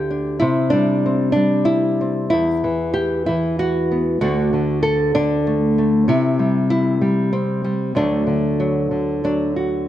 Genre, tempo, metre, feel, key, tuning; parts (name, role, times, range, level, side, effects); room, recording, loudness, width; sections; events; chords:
folk, solo fingerstyle acoustic guitar; 95 BPM; 3/4; rubato; D mixolydian; A4 = 440 Hz
nylon-string guitar; solo; 0.0-9.9 s; D2 to A4; -16 LUFS; equal
moderate scoring stage reverb, RT60 1.5 s; dark, warm production; -16 LUFS; side -12 dB against mid
0.0-9.9 A section
0.4 C; 2.3 E5; 4.2 D; 6.1 C; 8.0 D